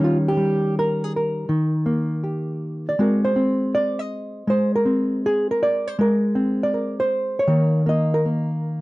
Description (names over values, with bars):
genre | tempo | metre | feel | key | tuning
solo jazz | 160 BPM | 4/4 | swing 65% on 8ths | Eb major | A4 = 441 Hz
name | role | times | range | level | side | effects
hollow-body jazz guitar | solo | 0.0-8.8 s | Eb3 to Eb5 | -19 LUFS | equal | none
room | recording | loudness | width
little or no reverb | dry, close 1970s-style studio recording | -19 LUFS | side -20 dB against mid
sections
0.0-8.8 A section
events
none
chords
0.0 Eb7; 3.0 Ab9; 7.5 Eb5